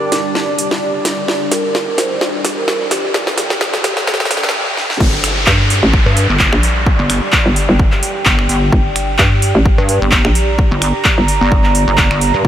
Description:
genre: bass house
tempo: 129 BPM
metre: 4/4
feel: swing 55% on 16ths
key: G minor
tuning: A4 = 438 Hz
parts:
  - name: vibraphone with soft mallets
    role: melody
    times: 0.0-4.5 s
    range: D4 to C5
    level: -24 LUFS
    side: right 2 dB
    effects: vintage 12-bit sampler grit, diffuse ambient delay
  - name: sweeping resonant pad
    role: sustained chords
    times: 0.0-12.5 s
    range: G3 to D5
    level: -24 LUFS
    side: equal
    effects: chorus, sidechain pumping
  - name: riser and downlifter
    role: sound effects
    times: 0.0-8.7 s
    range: none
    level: -23 LUFS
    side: equal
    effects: none
  - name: deep dark ambient pad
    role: texture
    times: 0.0-12.5 s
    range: G4 to Bb5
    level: -23 LUFS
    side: right 3 dB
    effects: chorus, built-in reverb, sidechain pumping
  - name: house drum kit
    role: drums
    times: 0.1-12.3 s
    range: crash cymbal, finger snaps, handclaps, hi-hat, snare drum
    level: -16 LUFS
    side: equal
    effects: studio reverb
  - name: hollow knocking FM bass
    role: bass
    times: 5.0-12.5 s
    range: G1 to G2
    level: -14 LUFS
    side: equal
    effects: overdrive, sidechain pumping
  - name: electronic kick drum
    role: drums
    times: 5.0-12.5 s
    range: none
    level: -15 LUFS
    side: equal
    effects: studio reverb
  - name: pulsing pluck wobble bass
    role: bass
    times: 6.1-12.4 s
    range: G1 to G2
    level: -14 LUFS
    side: equal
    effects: chorus, sidechain pumping
room: moderate huge ambient reverb, RT60 7.8 s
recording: dreamy mix soaked in reverb, high-pass filter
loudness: -11 LUFS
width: side -11 dB against mid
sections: 0.0-5.0 A section; 5.0-12.5 B section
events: build-up 0.0-5.0; drum fill 0.0-4.5, 4.8; riser 0.0-4.5; filter sweep 0.0-5.0; break 4.5-5.0; drop 5.0-12.5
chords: 0.0 G5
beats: 0.35 0.82 | 1.28 1.75 2.21 2.68 | 3.14 3.61 4.07 4.54 | 5.00 5.47 5.93 6.40 | 6.87 7.33 7.79 8.26 | 8.73 9.19 9.66 10.12 | 10.59 11.05 11.52 11.98 | 12.45

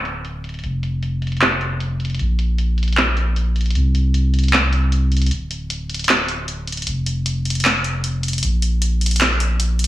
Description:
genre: future bass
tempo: 154 BPM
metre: 4/4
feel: half-time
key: D minor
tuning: A4 = 440 Hz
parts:
  - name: saturated sub bass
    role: bass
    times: 0.0-9.9 s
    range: D1 to C2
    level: -19 LUFS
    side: equal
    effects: tube saturation
  - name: trap drum kit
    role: drums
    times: 0.1-9.9 s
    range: handclaps, hi-hat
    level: -20 LUFS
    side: equal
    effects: overdrive, low-pass filter on hats, low-pass filter on snare
room: light reverb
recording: heavily compressed radio sound, studio ambience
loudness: -17 LUFS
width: side -14 dB against mid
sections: 0.0-9.9 A section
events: none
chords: none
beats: 0.25 | 0.64 1.03 1.42 1.80 | 2.19 2.58 2.97 3.36 | 3.75 4.14 4.53 4.92 | 5.31 5.70 6.09 6.48 | 6.87 7.26 7.65 8.04 | 8.43 8.82 9.21 9.60

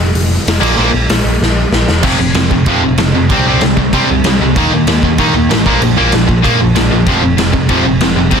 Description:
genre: punk rock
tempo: 190 BPM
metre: 4/4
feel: straight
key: unclear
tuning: A4 = 440 Hz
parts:
  - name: overdriven picked electric bass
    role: bass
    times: 0.0-8.4 s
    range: E1 to Eb3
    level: -16 LUFS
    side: equal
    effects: none
  - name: raw garage drum kit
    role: drums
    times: 0.2-8.4 s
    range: crash cymbal, hi-hat, kick drum, snare drum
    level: -14 LUFS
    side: equal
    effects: none
  - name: distorted electric guitar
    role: riff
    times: 0.6-8.4 s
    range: F2 to Eb4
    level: -15 LUFS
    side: left 14 dB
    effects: overdrive
  - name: distorted electric guitar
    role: riff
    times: 0.6-8.4 s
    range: F2 to Eb4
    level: -14 LUFS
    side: right 12 dB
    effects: overdrive
room: light reverb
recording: dense, heavily limited modern master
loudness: -9 LUFS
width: side -6 dB against mid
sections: 0.0-2.0 A section; 2.0-8.4 B section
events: drum fill 1.4-2.0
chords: 0.0 F5; 0.6 Bb5; 2.0 F5; 3.3 C5; 4.6 Eb5; 5.7 Bb5; 7.1 F5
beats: 0.14 0.45 | 0.77 1.08 1.40 1.72 | 2.03 2.35 2.66 2.98 | 3.29 3.61 3.92 4.24 | 4.55 4.87 5.18 5.50 | 5.81 6.13 6.44 6.76 | 7.07 7.39 7.70 8.02 | 8.33

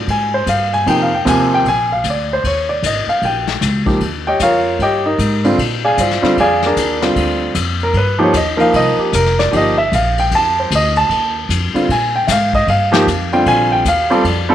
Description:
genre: jazz piano trio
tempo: 152 BPM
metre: 4/4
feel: swing 64% on 8ths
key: Bb mixolydian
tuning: A4 = 440 Hz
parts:
  - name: upright bass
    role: bass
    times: 0.0-14.5 s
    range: F1 to Bb2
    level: -20 LUFS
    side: equal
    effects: none
  - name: warm grand piano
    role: melody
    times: 0.1-14.5 s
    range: C3 to A5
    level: -14 LUFS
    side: right 1 dB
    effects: none
  - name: vintage brush drum kit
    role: drums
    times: 0.1-14.4 s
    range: hi-hat, kick drum, ride cymbal, snare drum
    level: -21 LUFS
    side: left 7 dB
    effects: none
room: moderate echo chamber reverb, RT60 1.4 s, small room ambience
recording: 1960s-style stereo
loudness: -12 LUFS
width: side -11 dB against mid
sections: 0.0-14.5 A section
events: grand piano solo 0.0-14.5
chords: 0.0 Bb7(no3) (rootless); 0.9 F5; 1.6 Bb; 2.4 Eb9; 5.6 Bb9; 7.2 Dm7; 7.9 Ebadd9; 8.7 Cm7; 10.3 F7; 11.9 Fmadd11; 12.7 G7(no3); 13.5 Bbadd9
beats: 0.07 0.46 | 0.86 1.25 1.65 2.04 | 2.43 2.83 3.22 3.62 | 4.01 4.40 4.80 5.19 | 5.58 5.98 6.37 6.77 | 7.16 7.55 7.95 8.34 | 8.73 9.13 9.52 9.92 | 10.31 10.70 11.10 11.49 | 11.88 12.28 12.67 13.06 | 13.46 13.85 14.24

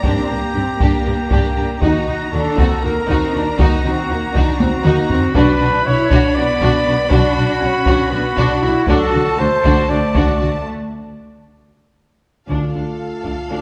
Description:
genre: cinematic, epic orchestral film score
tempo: 237 BPM (eighths)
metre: 7/8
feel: straight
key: unclear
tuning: A4 = 441 Hz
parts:
  - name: warm symphonic violin section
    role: melody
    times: 0.0-13.6 s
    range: F5 to B5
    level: -31 LUFS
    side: equal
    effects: none
  - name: dark symphonic violin section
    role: second line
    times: 0.0-13.6 s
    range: Gb4 to A4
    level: -28 LUFS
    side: equal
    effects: none
  - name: warm symphonic viola section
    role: accompaniment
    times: 0.0-13.6 s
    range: D4 to Eb4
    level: -25 LUFS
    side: equal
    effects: none
  - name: mellow French horn section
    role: sustained chords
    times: 0.0-9.1, 12.5-13.6 s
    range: F#3 to F4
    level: -27 LUFS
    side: equal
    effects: none
  - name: mellow trumpet section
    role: stabs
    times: 0.0-10.7 s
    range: F#4 to D5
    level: -22 LUFS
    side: equal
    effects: none
  - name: rich symphonic double bass section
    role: bass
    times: 0.0-12.7 s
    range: B1 to G2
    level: -24 LUFS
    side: equal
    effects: none
  - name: warm symphonic cello section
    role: bass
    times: 0.0-13.6 s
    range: D2 to F#4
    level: -25 LUFS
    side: equal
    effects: none
  - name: taiko ensemble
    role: drums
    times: 0.0-13.5 s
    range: none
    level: -22 LUFS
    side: equal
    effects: none
room: wet scoring stage reverb, RT60 1.7 s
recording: none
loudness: -16 LUFS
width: mono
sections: 0.0-12.5 A section; 12.5-13.6 B section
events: drum fill 4.6-5.4, 11.7-12.5; break 10.7-12.5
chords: 0.0 Gm; 1.8 Ebm; 5.4 Bm; 8.9 D; 12.5 Dm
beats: | 0.04 0.30 0.55 0.81 1.06 1.31 1.57 | 1.82 2.07 2.33 2.58 2.83 3.08 3.34 | 3.59 3.84 4.10 4.35 4.60 4.85 5.10 | 5.35 5.60 5.86 6.11 6.36 6.61 6.86 | 7.11 7.36 7.62 7.87 8.12 8.38 8.63 | 8.89 9.14 9.39 9.65 9.90 10.16 10.41 | 10.67 10.93 11.19 11.45 11.71 11.97 12.23 | 12.49 12.74 13.00 13.25 13.50

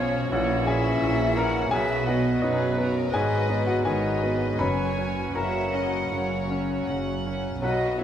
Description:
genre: classical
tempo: 79-85 BPM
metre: 4/4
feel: rubato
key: unclear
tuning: A4 = 440 Hz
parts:
  - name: clear baby grand piano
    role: melody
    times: 0.0-8.0 s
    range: A#1 to B5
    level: -27 LUFS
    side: left 1 dB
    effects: none
  - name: clear studio violin section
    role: melody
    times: 0.0-8.0 s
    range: F#4 to F#5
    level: -39 LUFS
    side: left 3 dB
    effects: none
  - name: bright silver concert flute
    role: second line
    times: 0.0-8.0 s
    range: B4 to G#5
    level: -32 LUFS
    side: left 2 dB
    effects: none
  - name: dark clarinet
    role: second line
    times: 0.0-8.0 s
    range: D#4 to B4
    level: -35 LUFS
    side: left 2 dB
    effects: none
  - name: warm oboe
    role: second line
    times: 0.0-7.9 s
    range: B4 to C#5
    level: -36 LUFS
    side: right 2 dB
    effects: none
  - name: warm studio violin section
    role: second line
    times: 0.0-8.0 s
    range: B4 to G#5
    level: -36 LUFS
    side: left 2 dB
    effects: none
  - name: clear bassoon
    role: accompaniment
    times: 0.0-7.9 s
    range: E3 to F#3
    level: -34 LUFS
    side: right 2 dB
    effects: none
  - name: rich studio viola section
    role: accompaniment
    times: 0.0-8.0 s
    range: B3 to F#4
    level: -33 LUFS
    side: right 1 dB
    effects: none
  - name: dark French horn section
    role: sustained chords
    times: 0.0-7.9 s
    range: B3 to F#4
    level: -34 LUFS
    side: left 4 dB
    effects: none
  - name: warm chamber double bass section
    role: bass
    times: 0.0-8.0 s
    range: F#1 to B1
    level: -32 LUFS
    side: right 4 dB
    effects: none
  - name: warm symphonic cello section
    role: bass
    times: 0.0-8.0 s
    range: F#2 to B2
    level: -33 LUFS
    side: right 3 dB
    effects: none
  - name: timpani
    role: percussion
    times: 4.6-5.7 s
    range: F#2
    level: -36 LUFS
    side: left 1 dB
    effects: none
room: wet recital hall reverb, RT60 1.6 s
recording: none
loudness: -22 LUFS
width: side -9 dB against mid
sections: 0.0-8.0 A section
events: none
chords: 0.3 F#7/A#; 1.7 B; 3.1 G#m7; 4.6 F#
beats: 0.31 1.02 | 1.73 2.43 3.14 3.86 | 4.60 5.36 6.12 6.88 | 7.62

